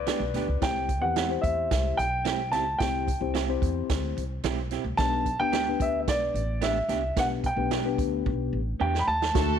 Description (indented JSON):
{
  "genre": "uptempo 1960s-style soul",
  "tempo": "110 BPM",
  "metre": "4/4",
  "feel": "straight",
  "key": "G major",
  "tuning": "A4 = 440 Hz",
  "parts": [
    { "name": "electric guitar through a small old amp", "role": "riff", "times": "0.0-0.6 s", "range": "B4 to D5", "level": "-32 LUFS", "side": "left 14 dB", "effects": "none" },
    { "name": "upright bass", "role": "bass", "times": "0.0-9.6 s", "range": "A1 to E2", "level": "-31 LUFS", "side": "equal", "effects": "none" },
    { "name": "electric guitar through a small old amp", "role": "stabs", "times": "0.1-8.9 s", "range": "B3 to G4", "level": "-33 LUFS", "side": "right 13 dB", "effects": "none" },
    { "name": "swinging big-band drum kit", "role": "drums", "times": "0.1-9.5 s", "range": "hi-hat, kick drum, snare drum", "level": "-31 LUFS", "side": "right 4 dB", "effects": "none" },
    { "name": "dark baby grand piano", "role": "melody", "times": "0.6-9.6 s", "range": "D5 to B5", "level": "-27 LUFS", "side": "equal", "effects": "none" },
    { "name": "tine electric piano", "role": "accompaniment", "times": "0.6-9.5 s", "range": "A3 to C5", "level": "-31 LUFS", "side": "left 14 dB", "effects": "lush chorus" },
    { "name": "clear saxophone section", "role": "second line", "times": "9.3-9.6 s", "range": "D3 to F#4", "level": "-29 LUFS", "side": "right 17 dB", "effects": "none" },
    { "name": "warm studio string section", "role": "second line", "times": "9.4-9.6 s", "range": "A4 to A5", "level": "-32 LUFS", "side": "equal", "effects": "slapback echo" }
  ],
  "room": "light reverb, small room reverb",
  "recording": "1960s-style stereo with parts hard left and right",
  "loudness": "-24 LUFS",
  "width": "side -8 dB against mid",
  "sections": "0.0-9.3 A section",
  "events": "drum fill 8.3-9.3",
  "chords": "0.0 G; 0.6 C; 5.0 G"
}